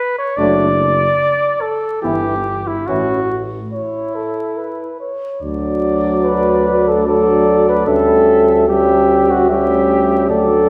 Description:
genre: classical, brass quintet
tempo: 73 BPM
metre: 3/4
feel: rubato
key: D major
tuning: A4 = 439 Hz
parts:
  - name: mellow trumpet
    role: melody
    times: 0.0-10.7 s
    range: E4 to E5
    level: -22 LUFS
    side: equal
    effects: none
  - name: mellow flugelhorn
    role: second line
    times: 0.4-10.7 s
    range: D4 to C#5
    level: -18 LUFS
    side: equal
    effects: none
  - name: clear euphonium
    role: accompaniment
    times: 0.4-10.7 s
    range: E3 to G3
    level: -23 LUFS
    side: equal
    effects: none
  - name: warm French horn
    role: accompaniment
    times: 0.4-10.7 s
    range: A3 to D4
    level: -24 LUFS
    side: equal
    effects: none
  - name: warm bass trombone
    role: bass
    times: 0.4-10.7 s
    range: F#1 to D2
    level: -23 LUFS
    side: equal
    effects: none
room: wet recital hall reverb, RT60 1.6 s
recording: recorded in a church or concert hall, vinyl crackle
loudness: -15 LUFS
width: mono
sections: 0.0-5.4 A section; 5.4-10.7 B section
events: none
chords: 0.4 D/F#; 2.0 Em/G; 2.9 A; 5.4 D; 7.9 A7/D

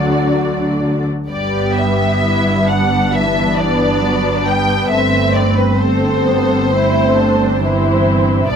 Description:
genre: classical, slow romantic movement for string orchestra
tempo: 66 BPM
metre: 4/4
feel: rubato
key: unclear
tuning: A4 = 440 Hz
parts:
  - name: muted symphonic violin section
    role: melody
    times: 0.0-8.6 s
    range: B4 to G5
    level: -19 LUFS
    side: left 1 dB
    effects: none
  - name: muted symphonic violin section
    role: second line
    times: 0.0-8.6 s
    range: C4 to D5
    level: -18 LUFS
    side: equal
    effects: none
  - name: muted symphonic viola section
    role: accompaniment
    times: 0.0-8.6 s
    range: E3 to C4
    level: -19 LUFS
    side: equal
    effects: none
  - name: muted chamber double bass section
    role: bass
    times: 0.0-8.6 s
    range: G1 to D2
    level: -20 LUFS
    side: right 2 dB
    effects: none
  - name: muted symphonic cello section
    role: bass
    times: 0.0-8.6 s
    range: G2 to D3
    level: -20 LUFS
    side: left 1 dB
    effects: none
room: light reverb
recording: close, detailed microphones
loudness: -12 LUFS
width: side -7 dB against mid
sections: 0.0-8.6 A section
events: none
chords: 0.0 D; 1.3 G; 4.9 Am9/G

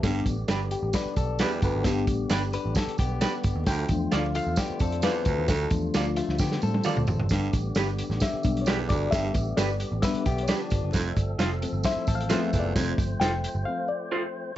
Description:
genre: uptempo 1960s-style soul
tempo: 132 BPM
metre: 4/4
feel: straight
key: G mixolydian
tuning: A4 = 440 Hz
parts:
  - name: reed electric piano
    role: accompaniment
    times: 0.0-14.5 s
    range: F3 to G5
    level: -30 LUFS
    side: left 4 dB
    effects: phaser
  - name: tonewheel organ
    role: sustained chords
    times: 0.0-14.5 s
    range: D3 to C5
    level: -37 LUFS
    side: right 1 dB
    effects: overdrive, fast rotary speaker, plate reverb
  - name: raspy baritone saxophone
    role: riff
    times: 0.0-12.9 s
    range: D2 to G2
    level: -32 LUFS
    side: right 5 dB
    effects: none
  - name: vintage muted picked electric bass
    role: bass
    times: 0.0-13.6 s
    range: F1 to D3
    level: -30 LUFS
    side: right 1 dB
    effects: none
  - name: vintage drum kit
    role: drums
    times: 0.0-13.5 s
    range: hi-hat, kick drum, snare drum, toms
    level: -28 LUFS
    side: right 1 dB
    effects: none
  - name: tambourine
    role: percussion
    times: 0.0-13.5 s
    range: none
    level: -42 LUFS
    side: right 6 dB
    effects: none
  - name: electric guitar through a small old amp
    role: stabs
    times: 0.5-14.2 s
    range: D4 to D5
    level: -30 LUFS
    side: right 3 dB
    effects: plate reverb
  - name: direct-recorded clean electric guitar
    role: riff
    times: 1.0-7.3, 10.0-12.7 s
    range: F3 to C5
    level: -34 LUFS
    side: left 7 dB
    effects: none
room: light reverb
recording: nothing above 7.8 kHz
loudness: -24 LUFS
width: side -13 dB against mid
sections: 0.0-14.6 A section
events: reed electric piano solo 0.0-14.6; drum fill 6.4-7.3; break 13.7-14.6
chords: 0.0 G; 3.7 Dm; 7.3 G; 10.9 F

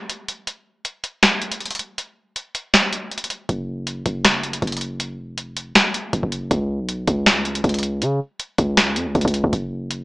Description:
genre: hip hop, trap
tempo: 159 BPM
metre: 4/4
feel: half-time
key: unclear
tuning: A4 = 440 Hz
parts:
  - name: booming analog drum machine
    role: drums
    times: 0.1-10.0 s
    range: finger snaps, hi-hat, kick drum, snare drum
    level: -18 LUFS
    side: equal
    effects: none
  - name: hard-hitting 808-style bass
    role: bass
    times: 3.5-10.0 s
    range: E#1 to C#3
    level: -23 LUFS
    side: equal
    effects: none
room: moderate digital room reverb, RT60 1.2 s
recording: small speaker sound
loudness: -19 LUFS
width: side -22 dB against mid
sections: 0.0-9.5 A section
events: break 0.0-3.5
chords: none

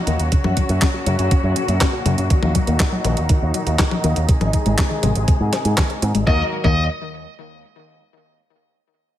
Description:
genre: italo disco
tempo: 121 BPM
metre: 4/4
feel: straight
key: Eb dorian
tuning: A4 = 444 Hz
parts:
  - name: muted studio string section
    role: sustained chords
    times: 0.0-6.5 s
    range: Bb2 to Bb4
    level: -24 LUFS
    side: left 1 dB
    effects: low-pass filter
  - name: analog pluck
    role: arpeggios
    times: 0.0-6.9 s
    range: C3 to C5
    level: -26 LUFS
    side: left 3 dB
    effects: chorus, digital delay
  - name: picked electric bass with an envelope filter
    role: bass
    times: 0.1-6.9 s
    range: Ab1 to Ab2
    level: -20 LUFS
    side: equal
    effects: none
  - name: clean 12-bit digital drum machine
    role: drums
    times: 0.1-6.2 s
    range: handclaps, hi-hat, snare drum, toms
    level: -23 LUFS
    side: equal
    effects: studio reverb
  - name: electronic kick drum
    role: drums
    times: 0.3-6.7 s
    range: none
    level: -18 LUFS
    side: equal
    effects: studio reverb
  - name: high-gain lead guitar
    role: melody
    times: 6.3-6.8 s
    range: Eb5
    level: -23 LUFS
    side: left 2 dB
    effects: distortion, ping-pong delay
room: light reverb, digital ambience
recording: none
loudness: -16 LUFS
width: side -12 dB against mid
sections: 0.0-6.3 A section; 6.3-8.3 B section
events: filter sweep on string section 0.0-6.3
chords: 0.3 Gb; 2.3 Ebm; 4.3 Ab; 6.3 Ebm

